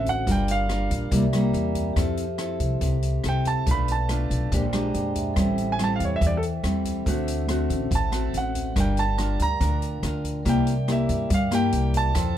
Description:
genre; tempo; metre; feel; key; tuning
bossa nova; 141 BPM; 4/4; straight; F major; A4 = 441 Hz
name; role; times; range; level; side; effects
clear concert grand piano; melody; 0.0-12.4 s; A4 to B5; -28 LUFS; right 4 dB; none
nylon-string guitar; accompaniment; 0.0-12.4 s; A2 to C5; -27 LUFS; left 1 dB; none
vibraphone with medium mallets; accompaniment; 0.0-12.4 s; F#4 to E6; -33 LUFS; right 3 dB; none
upright bass; bass; 0.0-12.4 s; G1 to G2; -26 LUFS; equal; none
open jazz drum kit; drums; 0.1-12.3 s; hi-hat, kick drum, rim click; -30 LUFS; equal; none
room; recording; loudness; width
little or no reverb; close, detailed microphones; -22 LUFS; side -11 dB against mid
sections
0.0-2.0 A section; 2.0-12.4 A section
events
grand piano solo 0.0-12.4; vibraphone fill 1.1-2.0, 4.5-5.4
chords
0.3 Gm7; 1.1 C7; 2.0 Fmaj7; 3.7 Bm7b5; 4.5 Bb13; 5.4 Am7; 7.1 D7; 8.8 Gm7; 10.5 C7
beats
| 0.27 0.70 1.12 1.54 | 1.97 2.39 2.82 3.24 | 3.67 4.09 4.52 4.94 | 5.37 5.79 6.21 6.64 | 7.06 7.49 7.91 8.34 | 8.76 9.18 9.61 10.03 | 10.46 10.88 11.30 11.73 | 12.15

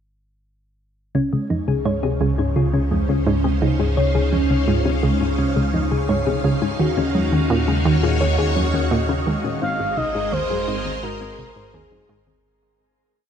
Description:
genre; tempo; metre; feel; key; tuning
ambient, sequencer-driven space music; 85 BPM; 4/4; straight; Db major; A4 = 440 Hz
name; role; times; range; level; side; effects
phased string machine; sustained chords; 1.1-12.4 s; Db3 to F5; -26 LUFS; equal; ensemble chorus, phaser
thumb-piano-like synth pluck; arpeggios; 1.1-12.4 s; Ab3 to Db5; -24 LUFS; left 2 dB; chorus, auto-pan, ping-pong delay
analog pluck; riff; 1.1-12.4 s; C2 to Db3; -22 LUFS; right 1 dB; chorus, ping-pong delay
warm sub bass; bass; 1.1-12.4 s; Ab1 to Eb2; -24 LUFS; equal; tube saturation
expressive portamento lead; melody; 9.6-12.3 s; Ab4 to F5; -26 LUFS; equal; chorus
room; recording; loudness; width
moderate shimmer reverb, RT60 8.3 s; faint mains hum; -18 LUFS; side -8 dB against mid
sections
1.1-12.4 A section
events
fade-in on string machine 1.1-12.4; fade-out 8.7-12.4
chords
1.1 Dbmaj7; 6.8 Ebm7; 9.6 Abadd9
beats
| 1.15 1.85 2.56 3.27 | 3.97 4.68 5.38 6.09 | 6.80 7.50 8.21 8.91 | 9.62 10.33 11.03 11.74

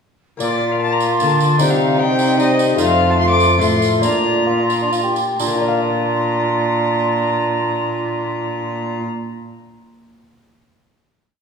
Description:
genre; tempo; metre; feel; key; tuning
classical, renaissance-style consort dance; 126-153 BPM; 3/4; straight; Bb major; A4 = 439 Hz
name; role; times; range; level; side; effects
warm violin; melody; 0.4-9.0 s; D5 to D6; -22 LUFS; left 2 dB; none
bass recorder; second line; 0.4-9.0 s; Eb4 to F4; -20 LUFS; right 2 dB; none
lute; accompaniment; 0.4-9.9 s; F2 to F5; -23 LUFS; left 5 dB; none
warm bassoon; accompaniment; 0.4-9.0 s; G3 to G4; -22 LUFS; left 1 dB; none
rich cello; bass; 0.4-9.0 s; F2 to D3; -21 LUFS; equal; none
tambourine; percussion; 0.4-5.6 s; none; -30 LUFS; right 5 dB; none
room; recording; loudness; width
wet recital hall reverb, RT60 1.8 s; heard from further back in the room, studio reverb; -15 LUFS; side -6 dB against mid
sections
0.4-5.4 A section; 5.4-8.3 final chord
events
slowing down 2.2-5.4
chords
0.4 Bb; 1.6 Cm; 2.8 F; 4.0 Bb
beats
| 0.41 0.81 1.20 | 1.60 1.99 2.39 | 2.79 3.19 3.60 | 4.03 4.47 4.93 | 5.40 5.88 6.36 | 6.83 7.31 7.79

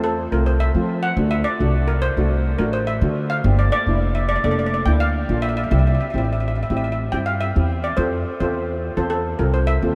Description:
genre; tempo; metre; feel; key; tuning
calypso; 106 BPM; 4/4; straight; F major; A4 = 440 Hz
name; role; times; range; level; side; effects
steel pan; melody; 0.0-9.9 s; A4 to G5; -26 LUFS; equal; tape echo
steel pan; accompaniment; 0.0-9.9 s; A3 to C5; -27 LUFS; equal; none
upright bass; bass; 0.0-9.9 s; F1 to F3; -23 LUFS; equal; none
room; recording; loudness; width
moderate huge ambient reverb, RT60 7.7 s; in a vast, echoing space; -20 LUFS; mono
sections
0.0-9.9 A section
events
none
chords
0.0 Fmaj7; 1.2 D7; 3.4 Gm7; 5.7 C; 8.0 Fmaj7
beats
0.04 0.60 | 1.17 1.74 2.31 2.88 | 3.44 4.01 4.58 5.14 | 5.71 6.28 6.84 7.41 | 7.98 8.54 9.11 9.68

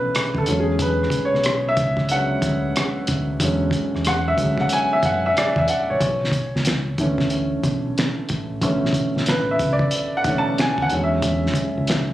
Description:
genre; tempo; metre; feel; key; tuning
R&B, neo-soul; 92 BPM; 4/4; swing 63% on 16ths; unclear; A4 = 440 Hz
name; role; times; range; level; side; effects
warm upright piano; accompaniment; 0.0-12.1 s; D3 to A5; -21 LUFS; equal; none
deep dub fingered electric bass; bass; 0.0-12.1 s; A1 to F#2; -25 LUFS; equal; none
cloth-damped thuddy drum kit; drums; 0.1-12.1 s; finger snaps, hi-hat, kick drum, rim click, snare drum; -23 LUFS; equal; none
room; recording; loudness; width
moderate small room ambience, RT60 0.5 s; recorded on a phone in the room, club reverb; -18 LUFS; side -14 dB against mid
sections
0.0-12.1 A section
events
upright piano solo 0.0-12.1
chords
0.5 E13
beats
0.14 | 0.79 1.45 2.10 2.75 | 3.40 4.05 4.71 5.36 | 6.01 6.66 7.32 7.97 | 8.62 9.27 9.92 10.58 | 11.23 11.88

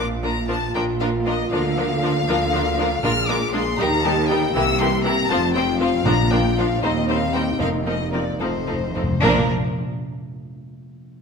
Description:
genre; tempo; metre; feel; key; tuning
quick classical-period movement for symphony orchestra; 78 BPM (dotted quarters); 6/8; rubato; Bb major; A4 = 440 Hz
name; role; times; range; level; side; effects
rich chamber violin section; melody; 0.0-9.5 s; Bb4 to F6; -25 LUFS; left 5 dB; none
rich chamber violin section; second line; 0.0-9.5 s; D4 to C5; -26 LUFS; left 2 dB; none
rich studio viola section; accompaniment; 0.0-9.5 s; E3 to E4; -27 LUFS; right 2 dB; none
mellow French horn section; sustained chords; 0.0-9.5 s; A3 to Ab4; -25 LUFS; left 4 dB; none
clear symphonic double bass section; bass; 0.0-9.5 s; F1 to Eb2; -27 LUFS; right 4 dB; none
rich studio cello section; bass; 0.0-9.5 s; Eb2 to Eb3; -27 LUFS; right 3 dB; none
timpani; percussion; 3.0-9.5 s; F2 to Bb2; -26 LUFS; equal; none
room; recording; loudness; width
wet scoring stage reverb, RT60 1.6 s; none; -18 LUFS; side -5 dB against mid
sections
0.0-9.2 A section; 9.2-10.8 B section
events
timpani fill 8.4-9.2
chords
0.0 Bb; 1.5 Bb/D; 3.0 Bb7; 3.8 Eb; 4.5 C7; 5.3 F5; 6.1 Bb; 6.8 Cm/Eb; 7.6 F7sus4; 8.4 F7; 9.2 Bb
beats
0.75 | 1.52 2.29 | 3.04 3.79 | 4.55 5.30 | 6.06 6.83 | 7.60 8.41 | 9.23

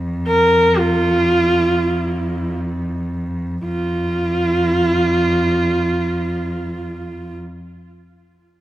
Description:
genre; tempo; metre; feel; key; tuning
mongolian traditional, Mongolian folk; free time; none; none; unclear; A4 = 437 Hz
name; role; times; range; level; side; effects
rich cello; drone; 0.0-7.4 s; F2; -22 LUFS; equal; none
clear horsehead fiddle; melody; 0.3-7.3 s; F4 to Bb4; -17 LUFS; right 1 dB; tape echo
room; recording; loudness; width
wet recital hall reverb, RT60 1.6 s; close, detailed microphones; -16 LUFS; side -14 dB against mid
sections
0.0-3.6 A section; 3.6-6.6 B section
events
slowing down 0.0-3.6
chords
none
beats
free time

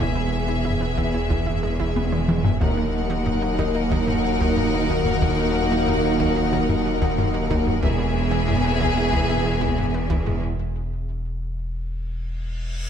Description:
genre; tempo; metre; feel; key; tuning
cinematic, hybrid orchestral and electronic film score; 92 BPM; 4/4; straight; unclear; A4 = 439 Hz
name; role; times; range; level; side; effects
rich symphonic violin section; melody; 0.0-10.4 s; E5 to Gb5; -31 LUFS; left 5 dB; none
warm symphonic violin section; second line; 0.0-10.4 s; G#4 to Bb4; -28 LUFS; left 6 dB; none
rich symphonic viola section; accompaniment; 0.0-10.4 s; B3 to Eb4; -30 LUFS; right 2 dB; none
airy breathy pad; sustained chords; 0.0-10.4 s; E3 to E5; -31 LUFS; left 2 dB; chorus
mellow French horn section; sustained chords; 0.0-10.4 s; Bb3 to G#4; -31 LUFS; left 2 dB; none
analog pluck; arpeggios; 0.0-10.4 s; Eb3 to E4; -32 LUFS; right 6 dB; chorus, ping-pong delay
clear studio double bass section; bass; 0.0-10.4 s; E1 to Eb2; -28 LUFS; right 4 dB; none
pure sine sub bass; bass; 0.0-12.9 s; Eb1 to E1; -29 LUFS; left 1 dB; none
rich symphonic cello section; bass; 0.0-10.4 s; Eb2 to E2; -28 LUFS; right 3 dB; none
taiko ensemble; drums; 0.0-10.4 s; none; -26 LUFS; left 1 dB; none
felt-muted upright piano; texture; 0.0-12.9 s; G#4 to Eb5; -40 LUFS; left 5 dB; none
reverse cymbal; sound effects; 12.3-12.9 s; none; -38 LUFS; left 1 dB; none
room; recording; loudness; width
light reverb; none; -20 LUFS; side -8 dB against mid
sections
0.0-12.9 A section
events
drum fill 2.0-2.6; break 10.4-12.9; reverse cymbal 12.3-12.9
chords
0.0 E; 2.6 Ebm; 7.8 E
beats
| 0.00 0.65 1.31 1.96 | 2.61 3.26 3.92 4.57 | 5.22 5.87 6.52 7.18 | 7.83 8.48 9.13 9.78 | 10.44 11.09 11.74 12.39

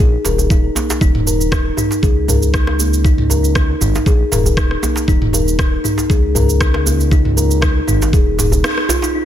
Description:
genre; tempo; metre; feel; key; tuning
afro house; 118 BPM; 4/4; swing 53% on 16ths; unclear; A4 = 440 Hz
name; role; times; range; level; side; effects
kalimba; arpeggios; 0.0-9.2 s; Bb3 to Bb4; -19 LUFS; left 1 dB; sidechain pumping, low-pass filter, ping-pong delay
round analog bass; bass; 0.0-8.6 s; Eb1 to Db2; -17 LUFS; equal; sidechain pumping
afro-pop drum kit; drums; 0.0-9.1 s; cabasa, rim click, toms; -19 LUFS; right 1 dB; none
djembe; percussion; 0.0-9.1 s; none; -24 LUFS; equal; none
electronic kick drum; drums; 0.5-8.2 s; none; -14 LUFS; equal; none
room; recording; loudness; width
digital ambience; none; -12 LUFS; side -11 dB against mid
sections
0.0-9.1 A section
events
break 8.6-9.1; band accent 8.6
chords
0.0 Eb5; 1.0 Dbsus2/Eb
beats
0.00 0.51 | 1.01 1.52 2.03 2.54 | 3.05 3.56 4.06 4.57 | 5.08 5.59 6.10 6.61 | 7.12 7.62 8.13 8.64 | 9.15

